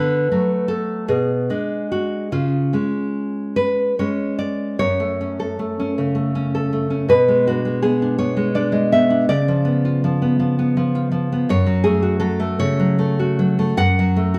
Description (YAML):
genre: romantic piece for solo classical guitar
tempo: 48-56 BPM (dotted quarters)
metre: 6/8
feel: rubato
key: F# minor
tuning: A4 = 440 Hz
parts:
  - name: nylon-string guitar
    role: solo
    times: 0.0-14.4 s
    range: F#2 to F#5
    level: -19 LUFS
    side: equal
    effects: none
room: moderate stone room reverb, RT60 1.1 s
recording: band playing live in one room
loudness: -19 LUFS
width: mono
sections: 0.0-4.8 A section; 4.8-14.4 B section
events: none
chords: 0.0 D; 1.1 G#dim/B; 2.3 C#; 4.8 F#m; 7.1 G#dim/B; 9.3 C#7b9; 11.5 F#m